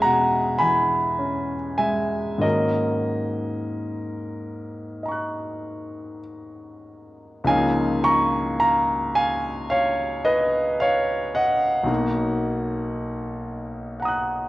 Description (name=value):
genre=classical, impressionist solo piano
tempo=46-58 BPM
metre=4/4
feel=rubato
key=Db mixolydian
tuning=A4 = 440 Hz
part: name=clear grand piano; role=solo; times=0.0-14.5 s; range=Cb2 to Gb6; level=-21 LUFS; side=equal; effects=none
room=wet recital hall reverb, RT60 1.3 s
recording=worn, warbling old tape, cassette tape, warbly pitch drift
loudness=-20 LUFS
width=side -17 dB against mid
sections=0.0-7.5 A section; 7.5-14.5 B section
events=none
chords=0.0 E69; 2.4 Ab9sus4; 7.5 Db69; 11.9 Cbmaj7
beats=0.04 1.19 | 2.44 3.74 5.02 6.25 | 7.47 8.61 9.72 10.80 | 11.88 12.95 13.99